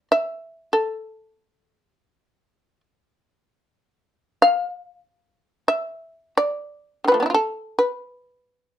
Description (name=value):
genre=japanese traditional, Japanese chamber music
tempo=free time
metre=none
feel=none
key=unclear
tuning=A4 = 440 Hz
part: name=shamisen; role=solo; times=0.0-8.8 s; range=D3 to F5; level=-18 LUFS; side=equal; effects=none
room=light reverb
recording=dark, warm production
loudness=-20 LUFS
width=side -10 dB against mid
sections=0.0-8.8 A section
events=none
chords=none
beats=free time